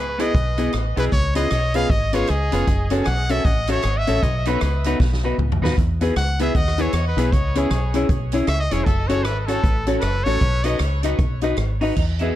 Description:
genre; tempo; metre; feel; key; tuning
ska; 155 BPM; 4/4; swing 61% on 8ths; unclear; A4 = 439 Hz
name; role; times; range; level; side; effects
brilliant trumpet; melody; 0.0-10.8 s; G#4 to G#5; -25 LUFS; equal; tape echo
deep dub fingered electric bass; bass; 0.0-12.3 s; E1 to E2; -22 LUFS; equal; none
clean electric guitar; accompaniment; 0.2-12.3 s; B3 to B4; -27 LUFS; right 2 dB; wide subtle chorus, tape echo
dark upright piano; stabs; 0.2-12.3 s; B3 to E5; -26 LUFS; left 4 dB; tape echo
swinging big-band drum kit; drums; 0.2-12.3 s; crash cymbal, hi-hat, kick drum, rim click, snare drum, toms; -23 LUFS; equal; none
semi-hollow electric guitar; melody; 11.8-12.4 s; D#4 to E4; -27 LUFS; equal; analog chorus, tape echo
room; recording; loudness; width
light reverb; none; -18 LUFS; side -13 dB against mid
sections
0.0-12.0 A section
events
trumpet solo 0.0-12.0; drum fill 5.0-5.8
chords
0.0 E; 1.1 C#7; 2.7 F#m; 4.2 B; 5.8 E; 7.3 C#m; 8.9 F#m; 10.4 B

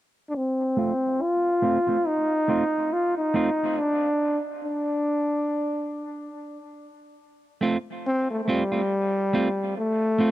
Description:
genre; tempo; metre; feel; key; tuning
reggae; 70 BPM; 4/4; swing 57% on 16ths; unclear; A4 = 440 Hz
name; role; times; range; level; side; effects
clear trombone; melody; 0.3-10.3 s; G3 to F4; -23 LUFS; equal; low-pass filter, dub echo
semi-hollow electric guitar; accompaniment; 0.8-10.3 s; A3 to F4; -27 LUFS; right 3 dB; low-pass filter, dub echo
room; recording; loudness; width
light reverb; dry, close 1970s-style studio recording; -22 LUFS; side -14 dB against mid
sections
0.3-7.2 A section; 7.2-10.3 B section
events
filter sweep 0.3-7.2; break 3.8-7.2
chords
0.3 F; 3.8 N.C.; 7.2 F

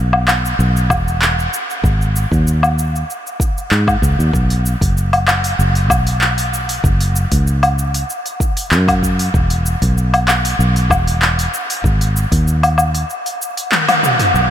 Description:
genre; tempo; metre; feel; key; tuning
sunset chillout; 96 BPM; 4/4; straight; unclear; A4 = 440 Hz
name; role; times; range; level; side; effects
fingered electric bass; bass; 0.0-14.5 s; E1 to G#2; -15 LUFS; equal; none
deep house drum kit; drums; 0.1-14.5 s; handclaps, hi-hat, shaker, toms, woodblock; -16 LUFS; left 1 dB; none
electronic kick drum; drums; 0.9-12.4 s; none; -19 LUFS; equal; none
room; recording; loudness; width
moderate huge ambient reverb, RT60 9.2 s; dreamy mix soaked in reverb; -13 LUFS; side -10 dB against mid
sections
0.0-14.3 A section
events
drum fill 13.7-14.3; band accent 13.7-14.0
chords
none

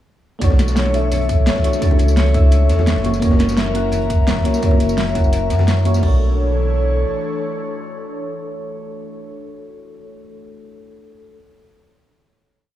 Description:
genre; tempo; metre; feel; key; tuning
liquid drum and bass; 171 BPM; 4/4; straight; B minor; A4 = 440 Hz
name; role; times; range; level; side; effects
mellow FM electric piano; accompaniment; 0.4-11.4 s; A3 to F#5; -24 LUFS; equal; chorus, phaser, diffuse ambient delay
airy breathy pad; sustained chords; 0.4-9.2 s; E3 to C#5; -26 LUFS; right 1 dB; chorus, sidechain pumping
vibraphone with medium hard mallets; arpeggios; 0.4-11.4 s; A4 to A#5; -26 LUFS; left 4 dB; diffuse ambient delay
smooth gliding synth bass; bass; 0.4-7.0 s; E1 to F#2; -17 LUFS; equal; none
crunchy breakbeat drum kit; drums; 0.4-6.0 s; hi-hat, snare drum; -31 LUFS; equal; high-pass filter on hats, high-pass filter on snare, high-pass filter on room
pop drum kit; drums; 0.4-6.1 s; crash cymbal, kick drum; -16 LUFS; equal; none
pop drum kit; drums; 0.4-6.0 s; hi-hat, snare drum, tambourine; -24 LUFS; right 1 dB; none
congas; percussion; 0.5-5.9 s; none; -28 LUFS; left 3 dB; none
room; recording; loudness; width
light reverb, small room ambience; none; -14 LUFS; side -12 dB against mid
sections
0.4-6.0 drop; 6.0-8.8 final chord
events
drop 0.4-6.0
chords
0.4 Bm11; 3.0 F#7; 6.0 Bm11

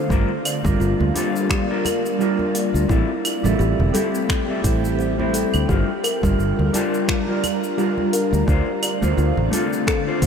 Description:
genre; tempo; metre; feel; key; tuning
sunset chillout; 86 BPM; 4/4; swing 56% on 16ths; G dorian; A4 = 439 Hz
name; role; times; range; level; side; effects
mellow electric guitar; accompaniment; 0.0-10.2 s; G3 to A5; -23 LUFS; moving between left 4 dB and right 4 dB; auto-pan, vintage 12-bit sampler grit, ping-pong delay, shimmer reverb
shimmering ambient pad; sustained chords; 0.0-10.3 s; D3 to Bb4; -25 LUFS; right 1 dB; chorus, built-in reverb, phaser, shimmer reverb
kalimba; arpeggios; 0.0-10.3 s; E4 to D5; -27 LUFS; left 3 dB; ping-pong delay, shimmer reverb
fingered electric bass; bass; 0.1-10.3 s; E1 to D2; -21 LUFS; equal; none
deep house drum kit; drums; 0.1-10.3 s; claves, finger snaps, hi-hat, shaker; -28 LUFS; equal; overdrive
electronic kick drum; drums; 0.1-10.3 s; none; -22 LUFS; equal; overdrive
congas; percussion; 0.7-9.7 s; none; -30 LUFS; right 3 dB; none
room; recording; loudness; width
moderate huge ambient reverb, RT60 8.1 s; dreamy mix soaked in reverb; -18 LUFS; side -7 dB against mid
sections
0.0-10.3 A section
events
none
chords
0.1 Gm7; 2.9 Am7; 5.7 Gm7; 8.5 Dm7

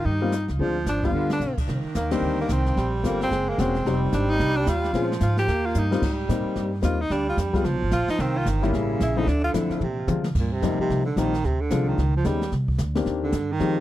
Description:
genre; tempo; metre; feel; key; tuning
jazz, small-group swing and bop; 221 BPM; 4/4; swing 61% on 8ths; C minor, Eb major from 10.4 s; A4 = 440 Hz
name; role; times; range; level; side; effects
clear tenor saxophone; melody; 0.0-9.5 s; Bb3 to G4; -27 LUFS; left 1 dB; tape echo
breathy baritone saxophone; second line; 0.0-13.8 s; Bb2 to Bb3; -28 LUFS; right 4 dB; none
upright bass; bass; 0.0-13.8 s; E1 to D3; -26 LUFS; equal; none
jazz brush drum kit; drums; 0.0-13.8 s; brushed snare drum, crash cymbal, hi-hat, kick drum, ride cymbal, snare drum, toms; -30 LUFS; equal; none
warm upright piano; accompaniment; 0.2-13.8 s; Eb3 to G4; -27 LUFS; left 6 dB; none
room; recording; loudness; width
little or no reverb; dry, close 1970s-style studio recording; -21 LUFS; side -14 dB against mid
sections
0.0-1.7 A section; 1.7-10.4 B section; 10.4-13.8 C section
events
drum fill 1.1, 5.7, 9.8-10.4; band accent 1.3, 2.1; baritone saxophone solo 10.4-13.8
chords
0.0 Eb69; 0.6 Dm7b5; 1.1 G7; 1.7 Cm9; 2.8 Gm11; 3.3 F#7#11; 3.9 Fm9; 4.9 Bbm7; 5.5 Eb69; 6.0 Abmaj9; 7.1 Ddim; 7.6 Db7; 8.2 Cm7; 8.7 A7b9; 9.3 Dm9; 9.8 Bb9; 10.4 Eb69; 11.4 Dm7b5; 12.0 Dbsus2; 12.5 Cm7

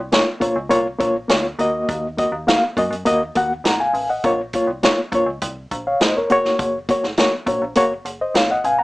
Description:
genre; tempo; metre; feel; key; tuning
uptempo 1960s-style soul; 102 BPM; 4/4; straight; unclear; A4 = 440 Hz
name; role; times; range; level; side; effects
metallic FM bass; bass; 0.0-8.8 s; F1 to Gb2; -30 LUFS; equal; none
reed electric piano; accompaniment; 0.1-8.8 s; Bb3 to Bb5; -17 LUFS; left 1 dB; fast tremolo
swinging big-band drum kit; drums; 0.1-8.8 s; hi-hat, kick drum, snare drum; -21 LUFS; right 1 dB; none
room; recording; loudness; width
light reverb; small speaker sound; -17 LUFS; side -20 dB against mid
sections
0.0-8.8 A section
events
none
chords
0.0 Bbm; 1.6 Ebm; 4.2 Bbm; 6.3 Gb

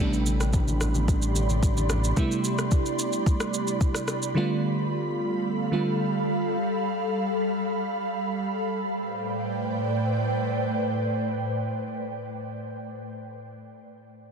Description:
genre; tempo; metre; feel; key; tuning
amapiano; 110 BPM; 4/4; straight; A minor; A4 = 440 Hz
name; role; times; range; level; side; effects
bell-like FM electric piano; accompaniment; 0.0-6.6 s; C3 to F4; -27 LUFS; right 2 dB; chorus
ethereal airy pad; sustained chords; 0.0-12.3 s; A2 to C6; -28 LUFS; equal; ensemble chorus, built-in reverb, sidechain pumping
fat analog bass; bass; 0.0-2.1 s; A1; -25 LUFS; equal; none
smooth R&B drum kit; drums; 0.1-4.3 s; kick drum, rim click, shaker; -26 LUFS; equal; overdrive
congas; percussion; 0.3-2.0 s; none; -34 LUFS; left 2 dB; none
room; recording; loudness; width
moderate lush hall reverb, RT60 2.6 s; dense, heavily limited modern master; -24 LUFS; side -6 dB against mid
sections
0.0-8.7 A section; 8.7-13.1 B section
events
none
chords
0.0 Am11; 4.4 G9; 8.7 Am11

